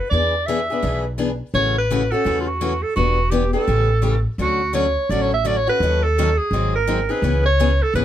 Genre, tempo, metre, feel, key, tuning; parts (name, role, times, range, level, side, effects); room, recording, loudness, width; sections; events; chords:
acoustic string swing (jazz manouche); 169 BPM; 4/4; swing 62% on 8ths; A major; A4 = 439 Hz
bright clarinet; melody; 0.0-8.0 s; F4 to E5; -20 LUFS; right 2 dB
picked steel-string acoustic guitar; accompaniment; 0.1-8.0 s; C#3 to A4; -23 LUFS; left 4 dB
upright bass; bass; 0.1-8.0 s; E1 to E2; -21 LUFS; equal
light reverb; -17 LUFS; side -11 dB against mid
0.0-4.4 A section; 4.4-8.0 B section
0.1 E7; 1.5 A6; 3.0 Em7; 3.7 A7; 4.4 Dmaj7; 5.8 D#m7b5; 6.5 G#7; 7.2 C#m7